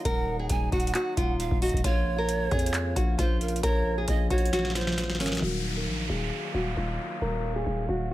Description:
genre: hip hop, trap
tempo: 134 BPM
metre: 4/4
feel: half-time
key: Eb minor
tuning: A4 = 436 Hz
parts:
  - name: nylon-string guitar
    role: melody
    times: 0.0-8.1 s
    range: Db4 to Bb4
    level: -31 LUFS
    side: equal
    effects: low-pass filter
  - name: mellow polished pan flute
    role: second line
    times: 0.0-5.4 s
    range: Bb4 to Ab5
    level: -34 LUFS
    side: right 5 dB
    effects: digital delay
  - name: mellow French horn section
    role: sustained chords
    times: 0.0-8.1 s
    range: Db3 to F5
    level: -38 LUFS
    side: left 1 dB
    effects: low-pass filter
  - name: growling 808-style bass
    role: bass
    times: 0.1-8.1 s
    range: Eb1 to F2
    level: -30 LUFS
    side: equal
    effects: none
  - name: booming analog drum machine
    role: drums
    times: 0.1-5.5 s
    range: handclaps, hi-hat, kick drum, snare drum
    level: -27 LUFS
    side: equal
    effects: none
  - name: felt-muted upright piano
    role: accompaniment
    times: 5.4-8.1 s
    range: Eb3 to F5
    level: -37 LUFS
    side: left 2 dB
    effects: low-pass filter
  - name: downlifter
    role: sound effects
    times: 5.4-8.1 s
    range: none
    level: -35 LUFS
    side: equal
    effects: none
room: little or no reverb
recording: none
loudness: -25 LUFS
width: side -15 dB against mid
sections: 0.0-5.4 A section; 5.4-8.1 B section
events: drum fill 4.5-5.4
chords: 0.0 Ebmadd9; 1.8 Bbm; 5.4 Ebmadd9

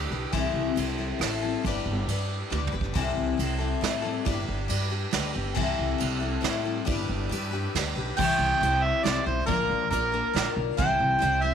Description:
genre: folk rock and heartland rock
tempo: 138 BPM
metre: 3/4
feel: straight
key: unclear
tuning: A4 = 440 Hz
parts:
  - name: picked twelve-string acoustic guitar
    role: accompaniment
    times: 0.0-11.5 s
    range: Bb2 to C5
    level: -29 LUFS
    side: left 11 dB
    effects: none
  - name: upright bass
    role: bass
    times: 0.0-11.5 s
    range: G1 to A2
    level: -30 LUFS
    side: right 1 dB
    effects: none
  - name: soft brush drum kit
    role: drums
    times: 0.3-11.3 s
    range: crash cymbal, hi-hat, kick drum, ride cymbal, rim click, snare drum, toms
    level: -31 LUFS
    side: right 7 dB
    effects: none
  - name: overdriven harmonica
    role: melody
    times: 8.2-11.5 s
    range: Bb4 to G5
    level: -25 LUFS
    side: right 3 dB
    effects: none
room: light reverb, small room ambience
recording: 1960s-style stereo with parts hard left and right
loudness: -24 LUFS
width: side -8 dB against mid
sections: 0.0-8.2 A section; 8.2-11.5 B section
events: drum fill 2.5-3.0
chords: 0.3 C6; 1.6 G; 3.0 C6; 4.3 G; 5.6 C6; 6.9 G; 8.2 C; 9.5 Bb; 10.8 C

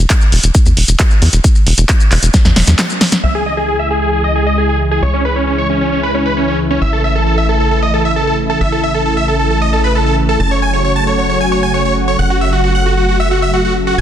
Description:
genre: uplifting trance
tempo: 134 BPM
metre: 4/4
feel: straight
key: C# minor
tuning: A4 = 440 Hz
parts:
  - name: tight sequencer bass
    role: bass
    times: 0.0-14.0 s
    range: E1 to E2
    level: -16 LUFS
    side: equal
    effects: sidechain pumping
  - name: electronic kick drum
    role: drums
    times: 0.1-2.4 s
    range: none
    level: -10 LUFS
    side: equal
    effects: none
  - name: punchy analog drum machine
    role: drums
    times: 0.1-3.2 s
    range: handclaps, hi-hat, shaker, snare drum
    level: -14 LUFS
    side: equal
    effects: low-pass filter on hats, low-pass filter on perc, low-pass filter on snare, low-pass filter on room
  - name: big supersaw lead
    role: melody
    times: 3.2-14.0 s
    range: C#4 to A5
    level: -15 LUFS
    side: right 1 dB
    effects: sidechain pumping, low-pass filter, tape echo
  - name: lush unison pad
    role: sustained chords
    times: 3.2-14.0 s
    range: B2 to F#4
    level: -17 LUFS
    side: equal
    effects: chorus, sidechain pumping
room: light reverb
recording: dense, heavily limited modern master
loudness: -11 LUFS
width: side -10 dB against mid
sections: 0.0-3.2 A section; 3.2-14.0 B section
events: drum fill 2.3-3.2; break 2.8-3.2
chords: 0.0 N.C.; 3.2 C#m; 6.8 A; 10.4 F#m

